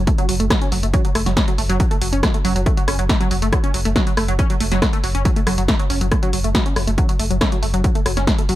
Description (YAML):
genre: driving peak-time techno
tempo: 139 BPM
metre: 4/4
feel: straight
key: F# minor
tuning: A4 = 441 Hz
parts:
  - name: tight sequenced synth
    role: riff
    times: 0.0-8.6 s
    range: F#3 to C#4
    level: -22 LUFS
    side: right 1 dB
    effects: chorus, tube saturation, cassette tape, sidechain pumping, tape echo
  - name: saturated sub bass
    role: bass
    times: 0.0-8.6 s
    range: F#1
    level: -21 LUFS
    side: equal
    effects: tube saturation, sidechain pumping, low-pass filter
  - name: electronic kick drum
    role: drums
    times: 0.1-8.4 s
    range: none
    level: -18 LUFS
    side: equal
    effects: overdrive
  - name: punchy analog drum machine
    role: drums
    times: 0.1-8.6 s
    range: hi-hat, rim click, snare drum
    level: -23 LUFS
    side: equal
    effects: sidechain pumping on hats
room: little or no reverb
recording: faint mains hum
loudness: -16 LUFS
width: side -14 dB against mid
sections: 0.0-8.6 A section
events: none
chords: 0.0 F#5